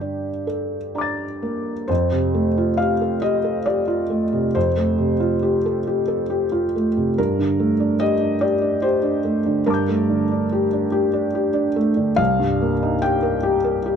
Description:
neoclassical minimalist piano; 42-49 BPM (dotted quarters); 6/8; rubato; A4 = 440 Hz
felt-muted upright piano; solo; 0.0-14.0 s; C2 to A6; -18 LUFS; equal
light reverb; dark, warm production; -18 LUFS; side -7 dB against mid
0.0-1.9 A section; 1.9-14.0 B section
0.0 Gmadd9; 1.9 Fadd9; 7.2 Gmadd9; 12.2 Cm7
0.48 | 1.89 3.24 | 4.56 5.87 | 7.18 8.44 | 9.69 10.95 | 12.20 13.44

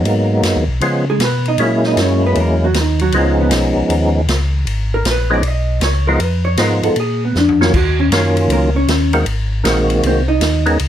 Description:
soul jazz organ trio; 157 BPM; 4/4; swing 65% on 8ths; Db mixolydian; A4 = 440 Hz
percussive tonewheel organ; melody; 0.0-10.8 s; Eb3 to Gb4; -16 LUFS; equal; slow rotary speaker, chorus vibrato
vintage hollow-body jazz guitar; accompaniment; 0.0-10.6 s; Cb3 to Fb5; -18 LUFS; right 1 dB
mellow tonewheel organ; bass; 0.0-10.9 s; Ab1 to Db3; -17 LUFS; equal; overdrive
swinging big-band drum kit; drums; 0.1-10.9 s; crash cymbal, hi-hat, kick drum, ride cymbal, snare drum, toms; -22 LUFS; equal
light reverb; -13 LUFS; side -10 dB against mid
0.0-10.9 A section
hollow-body jazz guitar solo 0.0-10.9; drum fill 7.4-7.7
0.1 Abm7; 0.8 Db9; 1.6 Gb9; 3.1 Db9; 6.2 Fm7b5; 7.0 Bb5; 7.7 Ebm7; 9.3 Ab9
| 0.06 0.45 0.83 1.22 | 1.60 1.99 2.37 2.75 | 3.14 3.52 3.91 4.29 | 4.67 5.06 5.44 5.82 | 6.21 6.59 6.97 7.35 | 7.74 8.12 8.50 8.88 | 9.27 9.65 10.03 10.41 | 10.79

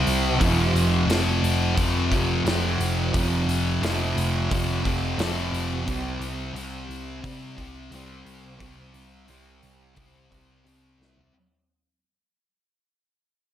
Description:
rock, shoegaze and dream pop; 88 BPM; 4/4; straight; A4 = 440 Hz
thick fuzz guitar; riff; 0.0-11.3 s; F2 to C4; -24 LUFS; equal; distortion, wide subtle chorus
hollow-body short-scale picked electric bass; bass; 0.0-11.3 s; F1 to C3; -28 LUFS; equal
loose indie drum kit; drums; 0.1-11.3 s; hi-hat, kick drum, snare drum, toms; -30 LUFS; equal
moderate plate reverb, RT60 1.4 s, studio ambience; dreamy mix soaked in reverb; -21 LUFS; side -11 dB against mid
0.0-11.3 A section
fade-out 0.0-11.3; drum fill 11.0-11.3
0.4 F5; 5.9 C5
| 0.41 1.09 1.77 2.46 | 3.14 3.82 4.50 5.19 | 5.87 6.55 7.24 7.92 | 8.61 9.29 9.97 10.66

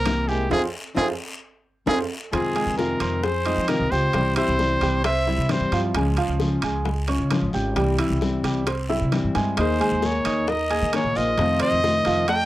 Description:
latin, Cuban son and guajira; 132 BPM; 4/4; straight; F minor; A4 = 441 Hz
clear trumpet; melody; 0.0-5.8, 9.6-12.5 s; G4 to G5; -24 LUFS; equal
fingerpicked steel-string acoustic guitar; accompaniment; 0.0-12.3 s; C3 to Ab4; -26 LUFS; left 3 dB
warm grand piano; arpeggios; 0.0-12.5 s; F3 to Ab6; -27 LUFS; right 4 dB
upright bass; bass; 0.0-12.5 s; Ab1 to F3; -26 LUFS; equal
bongos; percussion; 0.1-12.5 s; -30 LUFS; left 6 dB
guiro; percussion; 0.1-12.5 s; -39 LUFS; left 3 dB
timbales; percussion; 0.1-12.5 s; -32 LUFS; right 6 dB
nylon-string guitar; second line; 2.3-5.8, 9.6-12.5 s; F4 to Eb5; -32 LUFS; left 1 dB
light reverb; dry, close 1970s-style studio recording; -20 LUFS; side -15 dB against mid
0.0-2.3 A section; 2.3-12.5 B section
band accent 0.5-2.3; drum fill 1.9-2.3, 8.7-9.6
0.0 C7; 0.5 Fm7; 4.1 C; 6.0 Db; 7.8 C; 9.6 Ebsus4; 11.4 F7
0.06 | 0.51 0.97 1.42 1.87 | 2.33 2.78 3.23 3.69 | 4.14 4.59 5.05 5.50 | 5.95 6.41 6.86 7.31 | 7.76 8.22 8.67 9.12 | 9.57 10.03 10.48 10.93 | 11.38 11.84 12.29

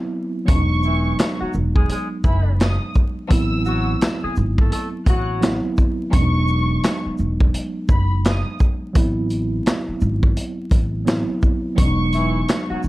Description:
hip hop, boom-bap hip-hop; 85 BPM; 4/4; swing 62% on 16ths; E major; A4 = 438 Hz
tine electric piano; accompaniment; 0.0-12.9 s; F#3 to E4; -24 LUFS; right 2 dB; medium stereo tremolo, cassette tape, high-pass filter, low-pass filter
clear studio violin section; melody; 0.5-12.7 s; B5 to F#6; -27 LUFS; left 1 dB; high-pass filter, low-pass filter, slapback echo
upright bass; bass; 0.5-12.9 s; E1 to A1; -21 LUFS; equal
vintage drum kit; drums; 0.5-12.9 s; handclaps, hi-hat, kick drum, shaker, snare drum; -18 LUFS; equal
clear saxophone section; stabs; 0.8-5.6, 12.1-12.8 s; E3 to A4; -28 LUFS; left 2 dB; high-pass filter, low-pass filter, slapback echo
light reverb; dark, warm production, vinyl crackle; -17 LUFS; side -18 dB against mid
0.5-12.9 A section
break 0.0-0.5
0.5 Emaj7; 3.3 Am6; 6.1 Emaj7; 9.0 Am6; 11.8 Emaj7
| 0.48 1.19 1.90 2.60 | 3.31 4.01 4.72 5.42 | 6.13 6.84 7.54 8.25 | 8.95 9.66 10.37 11.07 | 11.78 12.48

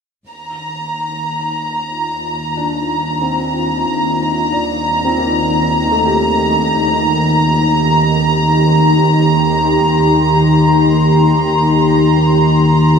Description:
ambient; free time; Eb lydian; A4 = 440 Hz
warm analog pad; sustained chords; 0.6-13.0 s; Eb3 to C6; -16 LUFS; equal; chorus
warm chamber cello section; bass; 0.3-13.0 s; Eb2; -25 LUFS; left 1 dB
analog drone; drone; 1.0-13.0 s; Eb3; -18 LUFS; equal; chorus
warm symphonic violin section; texture; 0.3-13.0 s; Bb5; -16 LUFS; right 1 dB
felt-muted upright piano; arpeggios; 2.6-13.0 s; A3 to D5; -22 LUFS; left 2 dB; ping-pong delay
wet huge ambient reverb, RT60 7.2 s; dark, warm production; -11 LUFS; side -6 dB against mid
0.3-13.0 A section
fade-in on analog synth pad 0.3-13.0; fade-in on felt piano 0.3-13.0; fade-in on cello section 0.3-13.0; fade-in on synth drone 0.3-13.0
0.3 Ebsus2
free time

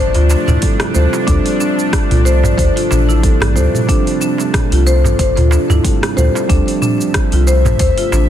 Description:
organic downtempo; 92 BPM; 4/4; swing 56% on 16ths; D minor; A4 = 440 Hz
felt-muted upright piano; accompaniment; 0.0-8.3 s; F3 to A4; -21 LUFS; right 6 dB; sidechain pumping, digital delay
bowed-like drone; sustained chords; 0.0-8.3 s; C3 to E5; -21 LUFS; left 1 dB; built-in reverb, sidechain pumping
marimba with soft mallets; arpeggios; 0.0-8.2 s; D4 to C5; -18 LUFS; left 2 dB; digital delay
warm sub bass; bass; 0.0-8.3 s; A1 to D2; -13 LUFS; equal; sidechain pumping
afro-pop drum kit; drums; 0.1-8.3 s; hi-hat, rim click, shaker, toms; -21 LUFS; right 1 dB; studio reverb
darbuka; percussion; 0.1-8.3 s; -23 LUFS; right 2 dB
electronic kick drum; drums; 0.6-7.9 s; -16 LUFS; equal; studio reverb
light reverb; dense, heavily limited modern master; -11 LUFS; side -10 dB against mid
0.0-8.3 A section
0.0 Dm7
0.62 | 1.28 1.93 2.58 3.23 | 3.89 4.54 5.19 5.84 | 6.50 7.15 7.80

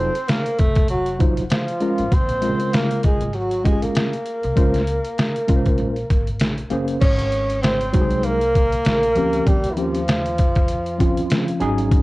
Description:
hip hop, jazz-hop; 98 BPM; 4/4; swing 58% on 16ths; Bb minor; A4 = 436 Hz
breathy flugelhorn; melody; 0.0-11.6 s; E4 to Db5; -25 LUFS; equal; tape echo
breathy tenor saxophone; second line; 0.0-11.6 s; E3 to Db4; -26 LUFS; right 1 dB; cassette tape
tine electric piano; accompaniment; 0.0-12.0 s; Db3 to C5; -22 LUFS; equal; overdrive, fast stereo tremolo, cassette tape
upright bass; bass; 0.0-12.0 s; F1 to F2; -27 LUFS; equal; tube saturation
trip hop sampler-style drum kit; drums; 0.2-12.0 s; crash cymbal, hi-hat, kick drum, snare drum; -19 LUFS; equal; cassette tape
small room ambience; home recording on cassette; -17 LUFS; side -20 dB against mid
0.0-7.0 A section; 7.0-12.0 B section
0.0 F7b9; 2.1 Bbm7; 4.6 Dbmaj7; 6.4 Bbm9; 7.0 Ab7sus4; 8.9 Bb; 9.5 Eb13
0.28 0.89 1.50 | 2.12 2.73 3.34 3.95 | 4.57 5.18 5.79 6.40 | 7.02 7.63 8.24 8.85 | 9.46 10.08 10.69 11.30 | 11.91

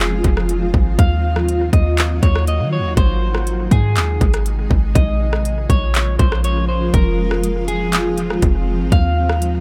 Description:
hip hop, atmospheric cloud-rap; 121 BPM; 4/4; half-time; Bb minor; A4 = 440 Hz
electric guitar at the edge of break-up; melody; 0.0-9.6 s; Ab4 to F5; -27 LUFS; equal; subtle chorus, analog delay
granular cloud pad; sustained chords; 0.0-9.6 s; C3 to Ab4; -25 LUFS; equal; built-in reverb, sidechain pumping
clean 808-style bass; bass; 0.0-9.6 s; F1 to Eb3; -20 LUFS; equal
trap drum kit; drums; 0.0-9.5 s; handclaps, hi-hat, kick drum, rim click; -19 LUFS; equal
little or no reverb; echo-heavy mix; -17 LUFS; mono
0.0-5.0 A section; 5.0-9.6 B section
0.0 Fm7; 1.0 Ebmadd9; 3.0 Ab; 5.0 Bbm7; 6.9 Fm7; 8.9 Ebmadd9
0.00 0.49 | 0.99 1.48 1.98 2.48 | 2.97 3.47 3.96 4.46 | 4.95 5.45 5.95 6.44 | 6.94 7.43 7.93 8.43 | 8.92 9.42

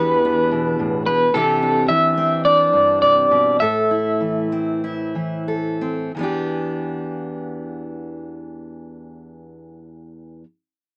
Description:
indie folk with a building arrangement; 87-109 BPM; 4/4; straight; E minor; A4 = 436 Hz
electric guitar through a small old amp; melody; 0.0-5.4 s; A4 to E5; -19 LUFS; equal; tremolo
fingerpicked steel-string acoustic guitar; accompaniment; 0.0-10.5 s; E2 to A4; -26 LUFS; equal
clear tuba; bass; 0.0-1.3 s; E2; -26 LUFS; equal
light reverb; small speaker sound; -19 LUFS; mono
0.0-6.1 A section; 6.1-8.9 B section
slowing down 1.3-6.1
0.0 Em7; 1.3 Cadd9; 3.6 Am; 6.1 Em7
0.23 0.78 | 1.33 1.89 2.45 3.02 | 3.60 4.20 4.82 5.47 | 6.14 6.83 7.53 8.22

